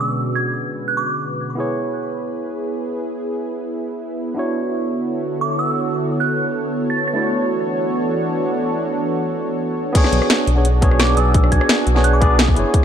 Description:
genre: liquid drum and bass.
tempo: 172 BPM.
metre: 4/4.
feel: straight.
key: B dorian.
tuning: A4 = 439 Hz.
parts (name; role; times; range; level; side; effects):
glassy synth bell; melody; 0.0-1.3, 5.4-7.2, 11.0-12.5 s; D6 to A6; -24 LUFS; right 3 dB; chorus, ping-pong delay.
barky tine electric piano; accompaniment; 0.0-12.8 s; A3 to D5; -24 LUFS; equal; overdrive, tape echo.
lush unison pad; sustained chords; 0.0-12.8 s; B2 to C#5; -22 LUFS; right 1 dB; chorus.
drum and bass drum kit; drums; 9.9-12.8 s; crash cymbal, hi-hat, rim click, snare drum; -20 LUFS; equal; none.
electronic kick drum; drums; 9.9-12.8 s; none; -15 LUFS; equal; overdrive.
smooth gliding synth bass; bass; 10.1-12.6 s; F#1 to B1; -16 LUFS; equal; none.
room: moderate recital hall reverb, RT60 1.6 s.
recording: dark, warm production.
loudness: -17 LUFS.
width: side -8 dB against mid.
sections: 0.0-9.9 A section; 9.9-12.8 B section.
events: filter sweep on analog synth pad 0.0-9.9; drop 9.9-12.8.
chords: 0.0 Bm69; 1.6 C#m7; 4.4 Dmaj13; 7.2 E13sus4; 9.9 Bm69.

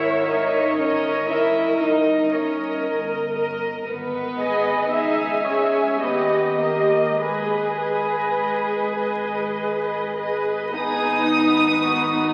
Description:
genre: classical, slow romantic movement for string orchestra.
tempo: 48-60 BPM.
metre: 3/4.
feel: rubato.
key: G# minor.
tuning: A4 = 440 Hz.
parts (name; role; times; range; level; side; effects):
rich studio violin section; melody; 0.0-12.3 s; D#5 to D#6; -30 LUFS; equal; none.
warm studio violin section; second line; 0.0-12.3 s; F#4 to E5; -29 LUFS; equal; none.
dark symphonic viola section; accompaniment; 0.0-12.3 s; B3 to E5; -25 LUFS; equal; none.
rich studio cello section; bass; 0.0-12.3 s; G#3 to E4; -28 LUFS; equal; none.
warm chamber double bass section; bass; 0.0-12.3 s; G1 to D#2; -41 LUFS; equal; none.
room: wet concert hall reverb, RT60 2.5 s.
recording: very old 78 rpm record, vinyl crackle.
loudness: -22 LUFS.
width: mono.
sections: 0.0-10.8 A section; 10.8-12.3 A section.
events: none.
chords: 0.0 A#m7b5/G#; 0.8 D#7/G; 3.9 G#m; 4.9 C#m; 6.0 D#; 7.2 G#m.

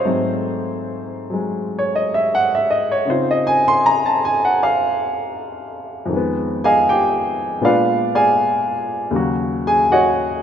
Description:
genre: solo jazz.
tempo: 79 BPM.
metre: 4/4.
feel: swing 69% on 8ths.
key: unclear.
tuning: A4 = 440 Hz.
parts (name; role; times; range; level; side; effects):
warm baby grand piano; solo; 0.0-10.4 s; Eb2 to C6; -16 LUFS; equal; none.
room: wet plate reverb, RT60 3.4 s.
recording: rough home demo mix.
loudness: -16 LUFS.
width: side -8 dB against mid.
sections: 0.0-10.4 A section.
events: grand piano solo 0.0-10.4.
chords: 0.0 Ab7b9; 3.1 Dbmaj9; 6.1 Fm7b5; 7.6 Bb7b9; 9.1 Ebm7.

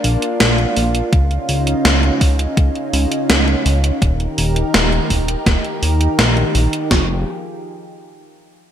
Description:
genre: synthwave.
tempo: 83 BPM.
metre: 4/4.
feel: straight.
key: unclear.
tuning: A4 = 440 Hz.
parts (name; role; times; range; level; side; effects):
lush unison pad; sustained chords; 0.0-7.2 s; Db3 to Bb4; -21 LUFS; equal; chorus, sidechain pumping.
fat analog bass; bass; 0.0-7.2 s; Eb1 to Eb2; -17 LUFS; equal; sidechain pumping.
gated 80s digital drum machine; drums; 0.0-6.9 s; hi-hat, snare drum; -18 LUFS; equal; gated reverb, gated reverb snare.
gated 80s digital drum machine; drums; 1.1-7.1 s; kick drum, snare drum; -16 LUFS; equal; gated reverb, gated reverb snare.
room: light reverb, digital ambience.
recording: bright 1980s-style digital production.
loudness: -14 LUFS.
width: side -10 dB against mid.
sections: 0.0-6.9 A section; 6.9-8.7 B section.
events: none.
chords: 0.0 Bb; 1.1 Dbadd9; 4.0 Eb; 6.9 Fmadd9.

